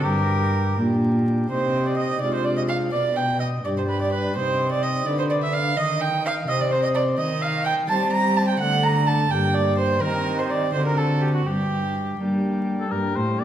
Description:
classical, baroque-style sonata movement with continuo; 84 BPM (dotted quarters); 6/8; straight; C minor, G minor from 7.2 s; A4 = 440 Hz
warm oboe; melody; 0.0-13.4 s; F#4 to Bb5; -30 LUFS; left 6 dB
warm violin; second line; 0.0-12.2 s; F#4 to Bb5; -24 LUFS; right 5 dB
dark cello; bass; 0.0-13.4 s; G2 to G3; -25 LUFS; equal
pipe organ, sparkling flutes; accompaniment; 0.1-13.4 s; G2 to C5; -26 LUFS; left 1 dB
wet recital hall reverb, RT60 1.8 s; vinyl crackle; -20 LUFS; side -10 dB against mid
0.0-1.5 A section; 1.5-12.9 A section
0.1 Gm; 1.5 Cm; 2.2 Dm7b5/C; 2.9 G/B; 4.4 Cm; 5.1 Dm69; 5.8 Cm; 8.6 D5; 9.3 Gm; 10.0 Cm/Eb; 10.7 D7; 11.5 Gm
| 0.05 0.78 | 1.51 2.22 | 2.94 3.65 | 4.36 5.07 | 5.78 6.49 | 7.20 7.90 | 8.61 9.31 | 10.02 10.74 | 11.46 12.19 | 12.91

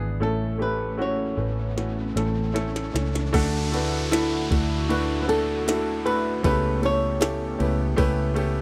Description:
pop ballad; 77 BPM; 4/4; straight; D major; A4 = 441 Hz
flamenco guitar; melody; 0.0-8.0 s; E4 to C#5; -29 LUFS; equal
warm upright piano; accompaniment; 0.0-8.6 s; A2 to B4; -30 LUFS; equal
chorused pulse-width pad; sustained chords; 0.0-8.6 s; C#3 to G4; -35 LUFS; equal
vintage muted fingered electric bass; bass; 0.0-8.6 s; G#1 to D2; -30 LUFS; equal
riser and downlifter; sound effects; 0.5-8.6 s; -39 LUFS; equal
glitchy drum kit; drums; 1.8-8.5 s; crash cymbal, kick drum, ride cymbal, snare drum; -30 LUFS; equal
little or no reverb; dry, close 1970s-style studio recording; -24 LUFS; mono
0.0-3.3 A section; 3.3-8.6 B section
riser 0.5-3.3; drum fill 1.8-3.3
0.2 A; 3.3 Dadd9; 6.4 A7/C#
| 0.21 0.99 1.77 2.55 | 3.34 4.12 4.90 5.67 | 6.44 7.21 7.98

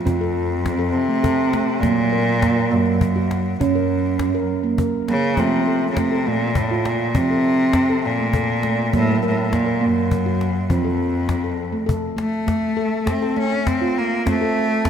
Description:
world meditative, meditative tuned percussion; 68 BPM (dotted quarters); 6/8; straight; A4 = 441 Hz
bright cello; melody; 0.0-14.9 s; F2 to Db4; -20 LUFS; left 1 dB; diffuse ambient delay
handpan; arpeggios; 0.0-14.9 s; F3 to Bb4; -21 LUFS; right 3 dB; diffuse ambient delay
cajon; percussion; 0.1-14.9 s; -26 LUFS; left 2 dB
wet concert hall reverb, RT60 2.0 s, small room ambience; -17 LUFS; side -8 dB against mid
0.0-12.5 A section; 12.5-14.9 B section
0.0 F; 1.8 Gb; 5.4 F; 8.9 Gb; 10.7 F
| 0.06 0.94 | 1.83 2.72 | 3.60 4.49 | 5.38 6.26 | 7.15 8.04 | 8.93 9.82 | 10.71 11.60 | 12.49 13.38 | 14.27

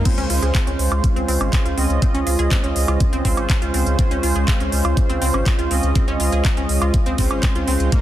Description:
progressive house; 122 BPM; 4/4; straight; Db major; A4 = 436 Hz
soft supersaw; stabs; 0.0-8.0 s; Ab3 to Eb5; -24 LUFS; right 2 dB; sidechain pumping, tape echo
saturated sub bass; bass; 0.0-7.9 s; Ab1 to Db2; -21 LUFS; equal; sidechain pumping
warm analog pad; sustained chords; 0.1-8.0 s; Db3 to C5; -30 LUFS; left 1 dB; chorus, sidechain pumping
wide unison pluck; arpeggios; 0.1-8.0 s; Bb3 to Ab4; -27 LUFS; equal; sidechain pumping, tape echo
electronic kick drum; drums; 0.1-8.0 s; -18 LUFS; equal; studio reverb
pop drum kit; drums; 0.1-8.0 s; crash cymbal, handclaps, hi-hat, woodblock; -26 LUFS; right 1 dB; studio reverb
little or no reverb; dense, heavily limited modern master; -16 LUFS; side -13 dB against mid
0.0-8.0 A section
0.1 Dbmaj7
| 0.06 0.55 1.04 1.53 | 2.02 2.52 3.01 3.50 | 3.99 4.48 4.97 5.46 | 5.96 6.45 6.94 7.43 | 7.92

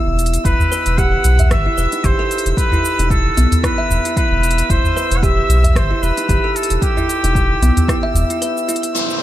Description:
organic downtempo; 113 BPM; 4/4; swing 55% on 16ths; E harmonic minor; A4 = 441 Hz
kalimba; arpeggios; 0.0-9.1 s; B3 to E5; -21 LUFS; right 2 dB; low-pass filter, ping-pong delay
drifting glass-harmonics texture; texture; 0.0-9.2 s; E6; -28 LUFS; right 2 dB; chorus, built-in reverb
warm sub bass; bass; 0.1-8.2 s; E1 to B1; -15 LUFS; equal
organic electronic drum kit; drums; 0.2-9.2 s; cabasa, hi-hat, rim click; -25 LUFS; equal; overdrive
electronic kick drum; drums; 0.4-8.0 s; -19 LUFS; equal; overdrive
trumpet with straight mute; melody; 0.5-9.2 s; G4 to F#5; -20 LUFS; left 1 dB; ping-pong delay
udu; percussion; 0.6-8.3 s; -19 LUFS; equal
downlifter; sound effects; 8.9-9.2 s; -18 LUFS; left 1 dB
little or no reverb; lossy compression artefacts; -13 LUFS; side -13 dB against mid
0.0-8.9 A section
break 8.4-8.9
0.5 Em
| 0.45 0.98 1.51 2.04 | 2.58 3.11 3.64 4.17 | 4.70 5.23 5.76 6.29 | 6.82 7.35 7.88 8.42 | 8.95

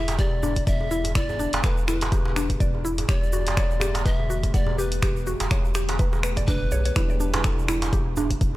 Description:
afro house; 124 BPM; 4/4; swing 56% on 16ths; E minor; A4 = 440 Hz
breathy hollow pan flute; melody; 0.0-6.9 s; B4 to E5; -32 LUFS; left 1 dB; tape echo
ethereal airy pad; sustained chords; 0.0-8.6 s; D3 to G4; -38 LUFS; left 1 dB; ensemble chorus, built-in reverb, sidechain pumping
warm sub bass; bass; 0.0-8.6 s; E1 to B1; -28 LUFS; equal; tube saturation, sidechain pumping
deep house drum kit; drums; 0.1-8.5 s; finger snaps, hi-hat; -31 LUFS; equal; studio reverb
djembe; percussion; 0.1-8.3 s; -32 LUFS; right 2 dB
egg shaker; percussion; 0.1-8.5 s; -41 LUFS; right 3 dB
mallet-like synth pluck; arpeggios; 0.2-8.3 s; D4 to F#5; -30 LUFS; left 1 dB; chorus, sidechain pumping, tape echo
electronic kick drum; drums; 0.2-8.5 s; -24 LUFS; equal; studio reverb
felt-muted upright piano; stabs; 7.0-8.6 s; G3 to B4; -33 LUFS; right 4 dB; sidechain pumping, tape echo
studio reverb; dry, gritty hardware recording; -21 LUFS; side -17 dB against mid
0.0-8.6 A section
0.0 Em7; 3.1 Gadd9/E; 7.0 Em7
0.19 0.67 | 1.16 1.64 2.12 2.61 | 3.09 3.58 4.06 4.54 | 5.03 5.51 5.99 6.48 | 6.96 7.45 7.93 8.41

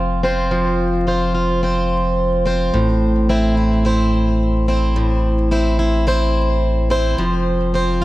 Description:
folktronica; 108 BPM; 4/4; straight; A minor; A4 = 440 Hz
picked plugged-in swing-style acoustic guitar; arpeggios; 0.0-8.0 s; A2 to C5; -17 LUFS; equal; low-pass filter, ping-pong delay
warm sub bass; bass; 0.0-8.0 s; F1 to A1; -19 LUFS; equal
light reverb, small room ambience; vinyl crackle; -15 LUFS; side -17 dB against mid
0.0-8.0 A section
0.0 F5; 2.7 Am; 7.2 F5
| 0.52 1.07 1.63 2.18 | 2.74 3.29 3.85 4.40 | 4.96 5.51 6.07 6.63 | 7.18 7.74

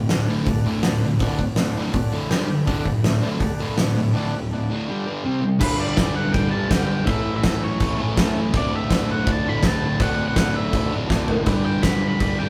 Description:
garage rock duo or trio; 163 BPM; 4/4; straight; D major; A4 = 440 Hz
fuzz guitar; riff; 0.0-12.5 s; D2 to C4; -25 LUFS; equal; distortion
combo organ; sustained chords; 0.1-12.5 s; E4 to G5; -37 LUFS; equal
oversized low-tuned drum kit; drums; 0.1-12.3 s; crash cymbal, hi-hat, kick drum, snare drum, toms; -24 LUFS; equal
octave-fuzz lead guitar; melody; 5.6-12.5 s; B4 to B5; -30 LUFS; equal; distortion
light reverb; rough rehearsal-room recording; -21 LUFS; mono
0.0-5.6 A section; 5.6-12.5 B section
break 4.2-5.6; drum fill 11.1-11.5
0.0 D; 2.3 G5; 2.7 D; 4.9 G5; 5.3 C5; 5.6 G; 7.1 A; 8.5 D; 11.5 G
0.11 0.47 0.84 | 1.21 1.58 1.95 2.31 | 2.68 3.05 3.42 3.78 | 4.15 4.52 4.88 5.25 | 5.62 5.99 6.35 6.72 | 7.08 7.45 7.81 8.18 | 8.54 8.91 9.28 9.64 | 10.01 10.38 10.74 11.11 | 11.48 11.85 12.22

